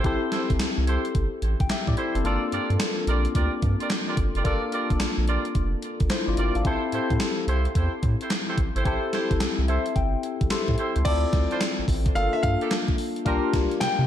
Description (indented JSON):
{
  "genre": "R&B, new jack swing",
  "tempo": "109 BPM",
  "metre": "4/4",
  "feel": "swing 65% on 16ths",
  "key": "G dorian",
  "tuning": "A4 = 440 Hz",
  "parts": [
    { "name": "barky tine electric piano", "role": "accompaniment", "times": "0.0-14.1 s", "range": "Bb3 to C6", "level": "-28 LUFS", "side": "left 5 dB", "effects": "phaser" },
    { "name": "warm horn section", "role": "stabs", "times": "0.0-13.5 s", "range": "Bb3 to D5", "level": "-31 LUFS", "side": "right 3 dB", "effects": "tape echo" },
    { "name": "round analog bass", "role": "bass", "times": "0.0-14.1 s", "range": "F1 to C3", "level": "-25 LUFS", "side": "equal", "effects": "none" },
    { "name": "gated 80s digital drum machine", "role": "drums", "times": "0.0-14.0 s", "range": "crash cymbal, handclaps, hi-hat, kick drum, snare drum", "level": "-27 LUFS", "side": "equal", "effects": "gated reverb, gated reverb snare, overdrive" },
    { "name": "clear concert grand piano", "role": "melody", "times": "11.0-14.1 s", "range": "D5 to G5", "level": "-28 LUFS", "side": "equal", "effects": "tape echo" }
  ],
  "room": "moderate plate reverb, RT60 1.7 s",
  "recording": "dark, warm production",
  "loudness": "-22 LUFS",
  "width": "side -10 dB against mid",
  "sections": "0.0-11.1 A section; 11.1-14.1 B section",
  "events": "kick muted 2.2-2.8; tine electric piano fill 9.4-11.1",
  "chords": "0.0 Am7; 2.2 Gm7; 6.7 Am7; 11.1 Dm9; 12.2 Gm9; 13.3 C9sus4"
}